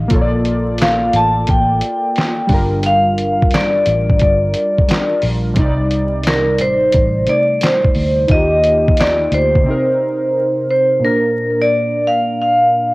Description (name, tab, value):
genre	lo-fi hip hop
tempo	88 BPM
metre	4/4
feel	swing 66% on 16ths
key	C dorian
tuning	A4 = 442 Hz
part	warbly lo-fi synth keys	accompaniment	0.0-12.9 s	Bb2 to F5	-20 LUFS	equal	chorus, low-pass filter
part	vintage muted fingered electric bass	bass	0.0-9.6 s	G1 to Eb2	-19 LUFS	equal	none
part	lo-fi sampler-style drum kit	drums	0.1-9.7 s	handclaps, hi-hat, kick drum, snare drum	-16 LUFS	equal	cassette tape
part	vibraphone with medium hard mallets	melody	0.8-12.9 s	Bb4 to A5	-15 LUFS	equal	low-pass filter, cassette tape
room	light reverb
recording	home recording on cassette, vinyl crackle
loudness	-12 LUFS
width	side -22 dB against mid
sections	0.0-11.0 A section; 11.0-12.9 B section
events	break 9.7-11.0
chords	0.1 Bbmaj7; 2.5 Gm7; 5.6 Cm69; 8.3 Ebmaj9; 9.7 Cm7; 11.0 Bb